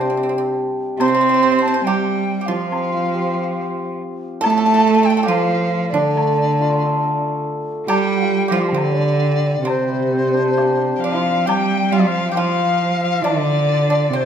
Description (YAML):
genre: chinese traditional, Chinese chamber ensemble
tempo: 69 BPM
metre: 4/4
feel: rubato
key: C zhi mode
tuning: A4 = 439 Hz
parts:
  - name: large dizi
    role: melody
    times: 0.0-14.3 s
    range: C5 to D6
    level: -22 LUFS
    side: left 2 dB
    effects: none
  - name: pipa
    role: second line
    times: 0.0-14.3 s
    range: C4 to C5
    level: -25 LUFS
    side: right 3 dB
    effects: none
  - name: rich cello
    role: second line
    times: 0.0-14.3 s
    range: C3 to C4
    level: -19 LUFS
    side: right 4 dB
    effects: none
  - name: hammered dulcimer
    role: accompaniment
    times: 0.0-14.3 s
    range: A2 to C5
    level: -22 LUFS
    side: left 1 dB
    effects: none
  - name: woodblock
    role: percussion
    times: 1.0-13.4 s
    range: none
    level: -28 LUFS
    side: left 5 dB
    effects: none
  - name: warm erhu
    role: second line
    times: 11.0-14.3 s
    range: C5 to G5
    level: -23 LUFS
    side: left 8 dB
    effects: none
room: wet recital hall reverb, RT60 1.6 s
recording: none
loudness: -15 LUFS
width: side -8 dB against mid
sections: 0.0-11.5 A section; 11.5-14.3 B section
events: none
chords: none